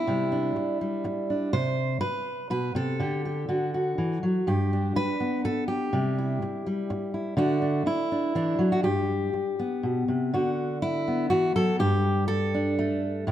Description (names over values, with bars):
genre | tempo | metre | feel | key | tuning
folk, solo fingerstyle acoustic guitar | 123 BPM | 3/4 | straight | G major | A4 = 439 Hz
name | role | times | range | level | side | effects
fingerpicked steel-string acoustic guitar | solo | 0.0-13.3 s | G2 to C5 | -24 LUFS | equal | none
room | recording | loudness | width
light reverb | none | -24 LUFS | side -11 dB against mid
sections
0.0-10.3 A section; 10.3-13.3 B section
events
none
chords
0.1 Cadd9; 1.5 Amadd9; 3.0 Dsus4; 3.5 D; 4.5 G; 5.9 C; 7.4 Dadd9; 8.8 G; 10.3 D6; 11.8 Gsus2